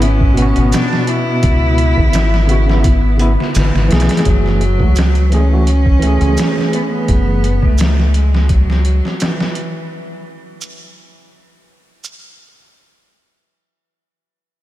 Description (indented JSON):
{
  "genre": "trip hop",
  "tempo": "85 BPM",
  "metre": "4/4",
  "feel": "straight",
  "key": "F# minor",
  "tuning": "A4 = 440 Hz",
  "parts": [
    { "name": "rich cello", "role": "melody", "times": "0.0-9.9 s", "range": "E3 to E4", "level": "-20 LUFS", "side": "equal", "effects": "tape echo" },
    { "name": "overdriven tine electric piano", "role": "accompaniment", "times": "0.0-7.5 s", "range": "B2 to G#4", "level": "-19 LUFS", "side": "equal", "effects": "fast tremolo, tape echo" },
    { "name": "muted studio string section", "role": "sustained chords", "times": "0.0-4.3 s", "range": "B3", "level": "-26 LUFS", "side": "equal", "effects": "none" },
    { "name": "deep dub fingered electric bass", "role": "bass", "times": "0.0-9.0 s", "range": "F#1 to C#2", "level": "-13 LUFS", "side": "equal", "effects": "none" },
    { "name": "trip hop sampler-style drum kit", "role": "drums", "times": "0.0-9.7 s", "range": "hi-hat, kick drum, snare drum", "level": "-17 LUFS", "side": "equal", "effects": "overdrive" },
    { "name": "maracas", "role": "percussion", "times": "0.7-12.2 s", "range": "none", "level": "-33 LUFS", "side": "right 4 dB", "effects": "none" }
  ],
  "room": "light reverb, small room ambience",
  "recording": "none",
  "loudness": "-11 LUFS",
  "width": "side -14 dB against mid",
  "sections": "0.0-4.3 A section; 4.3-14.6 B section",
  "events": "none",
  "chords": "0.0 C#m7; 4.3 F#m7; 9.9 N.C."
}